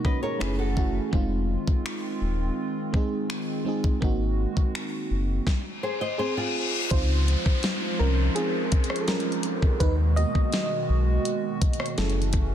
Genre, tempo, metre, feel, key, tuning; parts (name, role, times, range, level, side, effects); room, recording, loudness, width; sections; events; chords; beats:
contemporary R&B; 83 BPM; 4/4; straight; Db major; A4 = 440 Hz
mellow FM electric piano; accompaniment; 0.0-12.5 s; Ab3 to Eb5; -30 LUFS; right 2 dB; chorus
hollow soft pad; sustained chords; 0.0-12.5 s; Cb3 to C5; -32 LUFS; right 2 dB; chorus, sidechain pumping
flamenco guitar; arpeggios; 0.0-1.1, 5.8-6.9 s; F4 to Eb5; -31 LUFS; left 1 dB
smooth R&B drum kit; drums; 0.0-12.5 s; finger snaps, hi-hat, kick drum, rim click, snare drum; -26 LUFS; equal; soft clipping on snare, vintage 12-bit sampler grit
sub bass with octave; bass; 0.4-12.5 s; Eb1 to Eb2; -24 LUFS; equal
reverse cymbal and downlifter; sound effects; 5.7-12.5 s; -33 LUFS; left 2 dB
light reverb, digital ambience; dense, heavily limited modern master; -23 LUFS; side -10 dB against mid
0.0-6.9 A section; 6.9-12.5 B section
reverse cymbal 5.7-6.9; FM electric piano solo 6.9-12.5
0.4 Gbm7; 1.1 Fm7; 4.0 Ab7; 6.9 Dbmaj7; 9.8 Abm7/Eb; 12.0 Gbm7
0.41 | 1.13 1.85 2.57 3.30 | 4.02 4.74 5.46 6.19 | 6.91 7.63 8.36 9.08 | 9.80 10.53 11.25 11.97